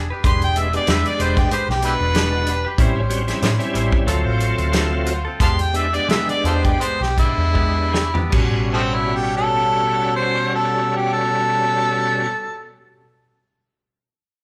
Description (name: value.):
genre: straight-eighth soul blues.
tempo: 75-94 BPM.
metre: 4/4.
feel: swing 55% on 16ths.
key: A mixolydian.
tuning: A4 = 440 Hz.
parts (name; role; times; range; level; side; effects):
clear horn section; sustained chords; 0.0-12.3 s; C#4 to D5; -34 LUFS; equal; none.
vintage muted fingered electric bass; bass; 0.0-13.0 s; E1 to E3; -25 LUFS; equal; none.
direct-recorded clean electric guitar; stabs; 0.1-13.0 s; F#3 to B#4; -32 LUFS; equal; none.
warm soul drum kit; drums; 0.2-8.5 s; crash cymbal, hi-hat, kick drum, snare drum, toms; -24 LUFS; equal; none.
warm harmonica; melody; 0.3-12.7 s; F3 to C6; -22 LUFS; equal; overdrive.
bright tonewheel organ; accompaniment; 0.6-12.3 s; B2 to G4; -26 LUFS; equal; slow rotary speaker, overdrive, chorus vibrato.
room: moderate large studio reverb, RT60 1.4 s.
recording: band playing live in one room.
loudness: -19 LUFS.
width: mono.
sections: 0.0-8.3 A section; 8.3-11.5 B section.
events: slowing down 2.8-8.3; drum fill 7.6-8.3.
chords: 0.0 E7#9; 2.8 A7#9; 4.1 D7#9; 5.4 E7#9; 8.3 A13.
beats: | 0.24 0.88 1.51 2.15 | 2.79 3.42 4.07 4.73 | 5.40 6.09 6.81 7.55 | 8.33 9.13 9.93 10.72.